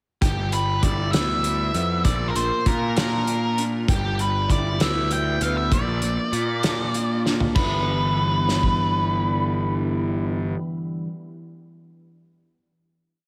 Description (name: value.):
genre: quiet-loud alternative rock.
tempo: 65 BPM (dotted quarters).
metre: 6/8.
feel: straight.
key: unclear.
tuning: A4 = 440 Hz.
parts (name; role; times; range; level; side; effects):
octave-fuzz lead guitar; melody; 0.2-10.5 s; G4 to G5; -28 LUFS; equal; distortion, tape echo.
electric guitar through a small old amp; arpeggios; 0.2-11.1 s; G2 to F4; -31 LUFS; equal; phaser, tape echo.
fuzz picked electric bass; bass; 0.2-10.5 s; G1 to Bb2; -27 LUFS; equal; overdrive.
loose indie drum kit; drums; 0.2-8.8 s; crash cymbal, hi-hat, kick drum, snare drum, toms; -27 LUFS; equal; none.
room: moderate lush hall reverb, RT60 2.7 s.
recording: big arena sound.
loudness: -23 LUFS.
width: mono.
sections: 0.2-7.6 verse; 7.6-11.2 final chord.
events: drum fill 7.3-7.6.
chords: 0.2 G6; 2.1 Bb; 3.9 G6; 5.7 Bb; 7.6 G6.